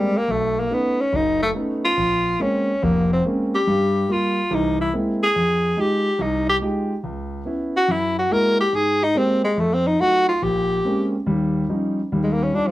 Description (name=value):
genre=jazz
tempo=142 BPM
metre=4/4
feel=swing 68% on 8ths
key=unclear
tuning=A4 = 440 Hz
part: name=warm tenor saxophone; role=melody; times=0.0-12.7 s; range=F3 to Bb4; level=-19 LUFS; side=equal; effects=none
part: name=warm concert grand piano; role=accompaniment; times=0.0-12.7 s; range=F1 to G4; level=-22 LUFS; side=equal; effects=none
room=wet small room reverb, RT60 0.5 s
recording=dark, warm production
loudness=-18 LUFS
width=side -16 dB against mid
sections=0.0-12.1 A section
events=none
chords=0.3 B9; 2.0 Bbm9; 3.7 Gm7; 4.5 Caug7; 5.3 Fm9; 7.0 Dbm7; 7.9 Gb9; 8.7 Abmaj9; 9.6 F7b9; 10.4 Bbm9; 11.3 Eb9; 12.1 Ebmaj9